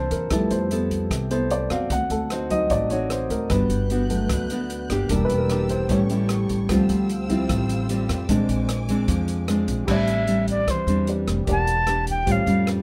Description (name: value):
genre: bossa nova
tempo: 150 BPM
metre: 4/4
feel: straight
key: A minor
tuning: A4 = 439 Hz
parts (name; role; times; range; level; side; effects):
- dark baby grand piano; accompaniment; 0.0-12.8 s; F3 to B5; -28 LUFS; equal; none
- nylon-string guitar; accompaniment; 0.0-12.8 s; A2 to A4; -27 LUFS; equal; none
- upright bass; bass; 0.0-12.8 s; E1 to F2; -29 LUFS; equal; none
- open jazz drum kit; drums; 0.1-12.8 s; crash cymbal, hi-hat, kick drum, rim click; -32 LUFS; equal; none
- warm symphonic string section; sustained chords; 3.5-9.9 s; A4 to G6; -40 LUFS; equal; none
- breathy bright concert flute; melody; 9.9-12.7 s; C5 to A5; -26 LUFS; equal; none
room: light reverb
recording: none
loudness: -23 LUFS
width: mono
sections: 0.0-9.9 A section; 9.9-12.8 A section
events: grand piano solo 0.0-9.9; flute solo 9.9-12.8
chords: 0.3 Fmaj9#11; 1.9 D7b9; 3.5 Gmaj7; 5.1 Em7b5; 5.9 A7; 6.7 Dm11; 8.3 Bb9; 9.9 Am11; 11.5 Em7b5; 12.3 A7alt